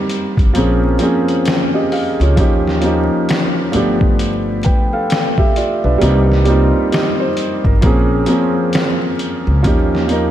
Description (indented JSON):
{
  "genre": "lo-fi hip hop",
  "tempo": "66 BPM",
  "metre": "4/4",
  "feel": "swing 61% on 16ths",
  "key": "Bb dorian",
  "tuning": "A4 = 444 Hz",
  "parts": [
    { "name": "felt-muted upright piano", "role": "accompaniment", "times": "0.0-10.3 s", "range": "F3 to G5", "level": "-15 LUFS", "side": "right 1 dB", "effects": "cassette tape, low-pass filter" },
    { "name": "lo-fi sampler-style drum kit", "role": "drums", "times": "0.1-10.3 s", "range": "hi-hat, kick drum, snare drum", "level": "-18 LUFS", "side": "equal", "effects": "overdrive" },
    { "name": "upright bass", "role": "bass", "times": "0.4-10.3 s", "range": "G1 to Eb2", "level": "-16 LUFS", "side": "equal", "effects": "none" }
  ],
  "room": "moderate lush hall reverb, RT60 3.2 s",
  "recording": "dreamy mix soaked in reverb, vinyl crackle",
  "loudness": "-12 LUFS",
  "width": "side -11 dB against mid",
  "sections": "0.0-10.3 A section",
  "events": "kick muted 0.6-2.4",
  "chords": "0.0 Cm7; 0.6 Bbm7; 2.4 Eb9; 3.7 G7; 6.0 Cm7; 7.8 Bbm7; 9.6 Eb9",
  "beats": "0.55 1.46 | 2.37 3.28 4.19 5.10 | 6.01 6.92 7.83 8.73 | 9.64"
}